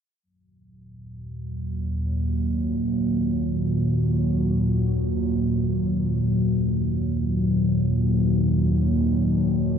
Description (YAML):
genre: hip hop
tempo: free time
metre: none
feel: none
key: Eb minor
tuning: A4 = 440 Hz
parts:
  - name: deep dark ambient pad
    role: sustained chords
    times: 1.2-9.8 s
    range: Eb2 to Gb3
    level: -21 LUFS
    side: equal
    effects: chorus, built-in reverb, low-pass filter
room: little or no reverb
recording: dry, gritty hardware recording, cassette tape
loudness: -21 LUFS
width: side -7 dB against mid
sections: 0.2-9.8 A section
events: filter sweep on ambient pad 0.2-9.8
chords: 0.2 Ebm